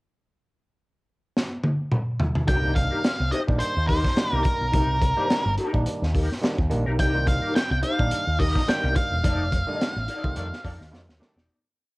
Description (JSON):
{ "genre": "funk", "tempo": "107 BPM", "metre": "4/4", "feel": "swing 56% on 16ths", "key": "C dorian", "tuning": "A4 = 440 Hz", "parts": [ { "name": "crunchy breakbeat drum kit", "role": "drums", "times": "1.4-11.5 s", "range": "hi-hat, kick drum, snare drum, toms", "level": "-25 LUFS", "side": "equal", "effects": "none" }, { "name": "octave-fuzz lead guitar", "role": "melody", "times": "2.5-10.9 s", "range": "Bb4 to G5", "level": "-27 LUFS", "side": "equal", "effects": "distortion, cassette tape" }, { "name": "electric guitar at the edge of break-up", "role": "accompaniment", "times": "2.5-11.6 s", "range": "Eb4 to Eb5", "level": "-31 LUFS", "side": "left 2 dB", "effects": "wah, tremolo, cassette tape, plate reverb" }, { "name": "auto-wah clav", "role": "stabs", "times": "2.5-11.4 s", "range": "D3 to F4", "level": "-32 LUFS", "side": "right 1 dB", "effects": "cassette tape" }, { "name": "picked electric bass with an envelope filter", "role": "bass", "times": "2.5-11.5 s", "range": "E1 to F2", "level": "-26 LUFS", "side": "equal", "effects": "none" }, { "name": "warm horn section", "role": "second line", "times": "10.4-11.4 s", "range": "Eb3 to A4", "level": "-44 LUFS", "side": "equal", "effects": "cassette tape" } ], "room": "light reverb", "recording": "home recording on cassette", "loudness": "-21 LUFS", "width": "side -23 dB against mid", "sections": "0.2-2.5 pickup bar; 2.5-11.5 groove", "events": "drum fill 1.4-2.5, 10.9-11.5; fade-out 9.2-11.5; band accent 9.2-11.5", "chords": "0.2 N.C.; 2.5 Cm7; 9.2 F13" }